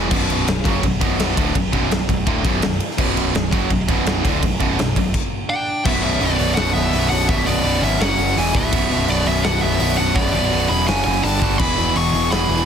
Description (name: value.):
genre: heavy metal.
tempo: 167 BPM.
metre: 4/4.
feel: straight.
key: B minor.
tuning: A4 = 440 Hz.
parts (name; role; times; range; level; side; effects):
distorted electric guitar; riff; 0.0-12.7 s; B1 to G3; -25 LUFS; left 12 dB; overdrive.
fuzz guitar; riff; 0.0-12.7 s; B1 to G3; -26 LUFS; equal; distortion.
tight distorted guitar; riff; 0.0-12.7 s; B1 to G3; -23 LUFS; right 12 dB; distortion.
fuzz picked electric bass; bass; 0.0-12.6 s; B0 to G#1; -23 LUFS; equal; overdrive.
big rock drum kit; drums; 0.1-12.6 s; crash cymbal, hi-hat, kick drum, ride cymbal, snare drum; -22 LUFS; equal; none.
high-gain lead guitar; melody; 5.5-12.7 s; D5 to C#6; -22 LUFS; left 1 dB; distortion, digital delay.
high-gain lead guitar; second line; 5.5-12.7 s; B3 to G#4; -29 LUFS; right 4 dB; distortion.
room: small room ambience.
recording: dense, heavily limited modern master.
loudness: -16 LUFS.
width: side -8 dB against mid.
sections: 0.1-5.9 A section; 5.9-12.7 B section.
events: stop 5.1-5.9; half time 5.9-12.7.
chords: 0.1 Bm; 5.1 N.C.; 5.9 Bm; 8.0 F#5; 8.4 E5; 8.7 Bm; 10.9 F#5; 11.2 G5; 11.6 E.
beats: | 0.11 0.47 0.83 1.19 | 1.55 1.91 2.27 2.62 | 2.98 3.34 3.70 4.06 | 4.42 4.78 5.14 5.50 | 5.85 6.21 6.57 6.93 | 7.29 7.65 8.01 8.36 | 8.72 9.08 9.44 9.80 | 10.16 10.51 10.87 11.23 | 11.59 11.95 12.31.